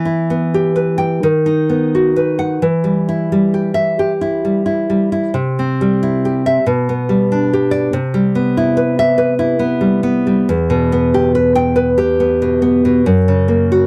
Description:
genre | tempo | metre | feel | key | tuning
romantic piece for solo classical guitar | 42-48 BPM (dotted quarters) | 6/8 | rubato | E minor | A4 = 441 Hz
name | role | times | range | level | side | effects
nylon-string guitar | solo | 0.0-13.9 s | E2 to G5 | -15 LUFS | equal | none
room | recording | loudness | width
light reverb | dark, warm production | -15 LUFS | mono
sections
0.0-13.9 A section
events
none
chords
0.0 Em; 1.2 B/D#; 2.6 Em; 5.3 C; 6.6 G/B; 7.9 Cmaj7; 10.5 Em; 13.0 F#

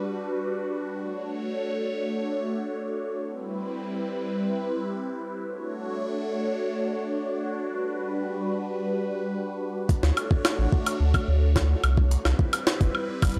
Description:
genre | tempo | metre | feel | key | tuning
IDM | free time | none | none | D major | A4 = 440 Hz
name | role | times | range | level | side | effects
phased analog pad | sustained chords | 0.0-13.4 s | G3 to C#5 | -31 LUFS | equal | phaser, chorus
electronic kick drum | drums | 9.9-13.3 s | none | -26 LUFS | equal | none
jungle sampler-style drum kit | drums | 9.9-13.4 s | hi-hat, snare drum, woodblock | -30 LUFS | equal | none
warm sub bass | bass | 10.0-13.4 s | G1 to D2 | -24 LUFS | equal | none
room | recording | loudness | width
light reverb, digital ambience | dry, gritty hardware recording, transformer saturation | -27 LUFS | mono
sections
0.0-9.9 A section; 9.9-13.4 B section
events
none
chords
0.0 Gmaj7; 1.0 Dmaj7; 3.2 Cmaj7; 5.4 Dmaj7; 7.7 Gmaj7; 9.9 Dmaj7; 12.1 Cmaj7

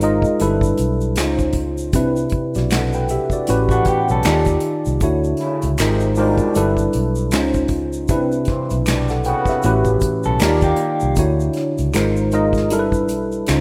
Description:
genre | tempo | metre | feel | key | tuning
R&B, neo-soul | 78 BPM | 4/4 | swing 58% on 16ths | unclear | A4 = 440 Hz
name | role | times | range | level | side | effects
tine electric piano | accompaniment | 0.0-13.6 s | A2 to G5 | -21 LUFS | equal | analog chorus
vintage muted fingered electric bass | bass | 0.0-13.6 s | G1 to Eb2 | -24 LUFS | equal | none
unplugged drum kit | drums | 0.0-13.6 s | finger snaps, hi-hat, kick drum, snare drum | -25 LUFS | equal | none
egg shaker and finger snaps | percussion | 0.0-13.6 s | none | -36 LUFS | equal | none
electric guitar through a small old amp | second line | 3.7-4.5, 10.3-11.1 s | A3 to Bb4 | -25 LUFS | equal | spring reverb
bright trombone section | stabs | 5.4-10.0 s | G2 to F#4 | -28 LUFS | equal | none
room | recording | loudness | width
light reverb, studio reverb | rough home demo mix | -18 LUFS | mono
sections
0.0-13.6 A section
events
none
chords
0.4 G6; 1.2 C#maj9; 1.9 Cmaj9; 3.5 A13; 4.2 Ebmaj9; 5.0 Dmaj9; 5.8 G#6; 6.5 G6; 7.3 C#maj9; 8.1 Cmaj9; 9.6 A13; 10.4 Ebmaj9; 11.2 Dmaj9; 11.9 G#6; 12.7 G6

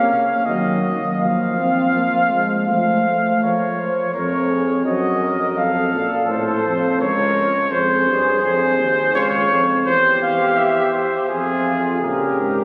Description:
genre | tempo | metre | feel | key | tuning
classical, imitative canzona for brass ensemble | 84 BPM | 3/4 | straight | Bb minor | A4 = 440 Hz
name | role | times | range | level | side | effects
mellow trumpet | melody | 0.0-12.6 s | Ab4 to F5 | -21 LUFS | equal | none
mellow flugelhorn | second line | 0.0-12.6 s | Db4 to C5 | -28 LUFS | equal | none
dark trombone | accompaniment | 0.0-3.4, 12.0-12.6 s | Db3 to C4 | -25 LUFS | equal | none
warm bass trombone | bass | 0.0-12.6 s | Db2 to F3 | -25 LUFS | equal | none
room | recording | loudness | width
wet church reverb, RT60 3.5 s | recorded on a phone in the room, club reverb, compression | -18 LUFS | mono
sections
0.0-3.4 A section; 3.4-12.0 B section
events
none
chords
0.5 Ebm; 1.2 Fsus4; 2.7 F; 3.4 Bbm/F; 4.9 Ebm/Gb; 5.6 F; 7.0 Bbm/Db; 7.7 Fm; 9.1 Db; 9.9 C/E; 11.3 Fm; 12.0 Gdim

